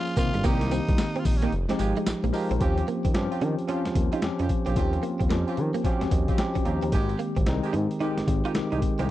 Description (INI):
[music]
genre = R&B, new jack swing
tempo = 111 BPM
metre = 4/4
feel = swing 63% on 16ths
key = unclear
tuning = A4 = 440 Hz
[part]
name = breathy tenor saxophone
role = melody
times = 0.0-1.5 s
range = Db4 to F4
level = -33 LUFS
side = equal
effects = tape echo
[part]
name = bell-like tine electric piano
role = accompaniment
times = 0.0-9.1 s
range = Db3 to Bb5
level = -28 LUFS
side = left 2 dB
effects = medium stereo tremolo
[part]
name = boom bap sampler-style drum kit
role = drums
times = 0.1-9.1 s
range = hi-hat, kick drum, snare drum, tambourine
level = -26 LUFS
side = equal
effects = none
[part]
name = direct-recorded clean electric guitar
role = riff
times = 0.2-9.1 s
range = G3 to F4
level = -32 LUFS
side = right 6 dB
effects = ensemble chorus
[part]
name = smooth gliding synth bass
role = bass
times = 0.2-9.1 s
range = F1 to Eb3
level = -28 LUFS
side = equal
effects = none
[part]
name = warm horn section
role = stabs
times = 0.4-9.1 s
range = Ab3 to G4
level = -36 LUFS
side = right 6 dB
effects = none
[sound]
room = little or no reverb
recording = dry, close 1970s-style studio recording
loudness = -23 LUFS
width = side -14 dB against mid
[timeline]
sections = 0.0-2.6 A section; 2.6-9.1 B section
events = kick muted 1.5-2.6; tine electric piano fill 5.8-6.9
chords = 0.2 Cm7; 1.5 Fm9; 2.6 Eb13; 6.9 Abmaj7